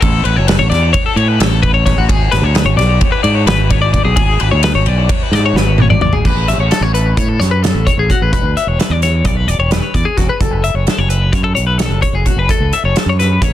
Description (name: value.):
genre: math rock and midwest emo.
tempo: 260 BPM (eighths).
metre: 9/8.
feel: straight.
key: A major.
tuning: A4 = 440 Hz.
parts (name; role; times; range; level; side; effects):
twelve-string electric guitar; arpeggios; 0.0-13.5 s; F#4 to E5; -16 LUFS; left 6 dB; tremolo, tape echo.
growling fingered electric bass; bass; 0.0-13.5 s; E1 to A2; -14 LUFS; right 1 dB; overdrive.
loose indie drum kit; drums; 0.0-13.5 s; crash cymbal, hi-hat, kick drum, ride cymbal, snare drum, toms; -15 LUFS; equal; none.
room: little or no reverb.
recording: dense, heavily limited modern master.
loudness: -11 LUFS.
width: side -12 dB against mid.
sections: 0.0-6.2 A section; 6.2-13.5 B section.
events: drum fill 5.6-6.2.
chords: 0.0 A6; 2.1 G#dim; 6.2 A69; 8.3 E7(no3); 10.4 F#madd11.